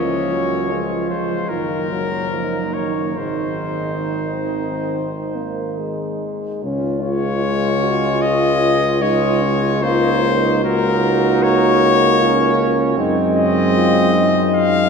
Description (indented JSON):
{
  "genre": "classical, hymn-like piece for brass band",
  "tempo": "67-78 BPM",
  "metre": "4/4",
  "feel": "rubato",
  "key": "Db major",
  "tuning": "A4 = 440 Hz",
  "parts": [
    { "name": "clear cornet", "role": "melody", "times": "0.0-14.9 s", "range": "Bb4 to F5", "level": "-20 LUFS", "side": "left 5 dB", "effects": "none" },
    { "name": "mellow flugelhorn", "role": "second line", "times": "0.0-14.9 s", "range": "C4 to F4", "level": "-24 LUFS", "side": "right 7 dB", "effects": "none" },
    { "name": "clear euphonium", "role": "accompaniment", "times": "0.0-14.9 s", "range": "Ab3 to Gb4", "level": "-23 LUFS", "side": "left 2 dB", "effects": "none" },
    { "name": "mellow euphonium", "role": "accompaniment", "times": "0.0-14.9 s", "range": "Eb3 to Bb3", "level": "-23 LUFS", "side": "right 2 dB", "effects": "none" },
    { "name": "warm tuba", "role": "bass", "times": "0.0-14.9 s", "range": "Gb1 to Gb2", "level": "-22 LUFS", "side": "left 1 dB", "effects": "none" }
  ],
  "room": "wet cathedral reverb, RT60 5.6 s",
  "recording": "heard from further back in the room",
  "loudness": "-15 LUFS",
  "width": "side -5 dB against mid",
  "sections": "0.0-6.6 A section; 6.6-14.9 B section",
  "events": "none",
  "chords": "0.0 Db; 1.5 Ebm/Gb; 3.2 Ab; 6.6 Db; 9.8 Ebm/Db; 13.0 Ab7/Gb"
}